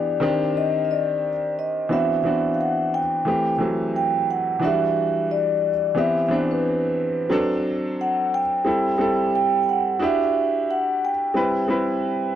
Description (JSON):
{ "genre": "soul", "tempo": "89 BPM", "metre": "4/4", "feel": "swing 54% on 16ths", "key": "unclear", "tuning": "A4 = 444 Hz", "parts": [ { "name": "vibraphone with soft mallets", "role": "melody", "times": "0.0-12.3 s", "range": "B4 to G5", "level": "-22 LUFS", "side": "moving between left 9 dB and right 8 dB", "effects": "auto-pan" }, { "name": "clear baby grand piano", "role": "accompaniment", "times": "0.0-12.4 s", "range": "Eb3 to B4", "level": "-23 LUFS", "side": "equal", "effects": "none" } ], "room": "little or no reverb", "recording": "dry, close 1970s-style studio recording", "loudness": "-19 LUFS", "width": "side -10 dB against mid", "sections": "0.0-3.3 A section; 3.3-12.4 B section", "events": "none", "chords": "0.2 Cmadd9; 1.9 D13; 3.3 Am7; 4.6 Em9; 6.0 Cmaj7; 7.3 D7; 8.7 Am7; 10.0 Em9; 11.4 Cmaj7", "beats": "| 0.56 1.23 1.91 2.58 | 3.26 3.93 4.61 5.29 | 5.96 6.63 7.31 7.99 | 8.66 9.34 10.01 10.68 | 11.36 12.03" }